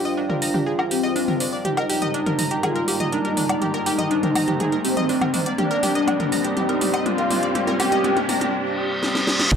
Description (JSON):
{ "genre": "melodic techno", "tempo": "122 BPM", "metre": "4/4", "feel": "straight", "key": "unclear", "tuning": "A4 = 436 Hz", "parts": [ { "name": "mellow synth brass", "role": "melody", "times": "0.0-9.6 s", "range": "C4 to G4", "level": "-24 LUFS", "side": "left 1 dB", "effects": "chorus, phaser, sidechain pumping, tape echo" }, { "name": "dark analog pad", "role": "sustained chords", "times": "0.0-9.6 s", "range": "G3 to Bb5", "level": "-28 LUFS", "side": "right 2 dB", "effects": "chorus, sidechain pumping" }, { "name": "riser, reverse cymbal and impact", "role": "sound effects", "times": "0.0-9.6 s", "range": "none", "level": "-29 LUFS", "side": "equal", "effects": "none" }, { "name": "warbly tape-like pad", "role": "texture", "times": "0.0-8.5 s", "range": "Bb3 to C5", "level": "-31 LUFS", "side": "left 1 dB", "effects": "chorus, built-in reverb, sidechain pumping" }, { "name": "analog pluck", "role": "arpeggios", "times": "0.1-9.6 s", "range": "D4 to Bb5", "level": "-26 LUFS", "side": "equal", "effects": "chorus, sidechain pumping, dub echo" }, { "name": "house drum kit", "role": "drums", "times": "0.3-9.6 s", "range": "crash cymbal, hi-hat, snare drum, toms, woodblock", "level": "-25 LUFS", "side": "left 1 dB", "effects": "overdrive" }, { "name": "tight sequencer bass", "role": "bass", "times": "9.5-9.6 s", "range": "G1", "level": "-18 LUFS", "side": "equal", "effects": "sidechain pumping" }, { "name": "electronic kick drum", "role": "drums", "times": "9.5-9.6 s", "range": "none", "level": "-19 LUFS", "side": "equal", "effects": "overdrive" } ], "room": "wet spring reverb, RT60 1.5 s", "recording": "echo-heavy mix", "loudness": "-19 LUFS", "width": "side -7 dB against mid", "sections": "0.0-9.5 A section", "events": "build-up 0.0-9.5; riser 0.0-8.5; filter sweep on analog polysynth 0.0-9.5; drum fill 1.6-8.5, 9.0-9.5; reverse cymbal 8.5-9.5", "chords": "0.0 Fm/G; 5.6 Csus2/G" }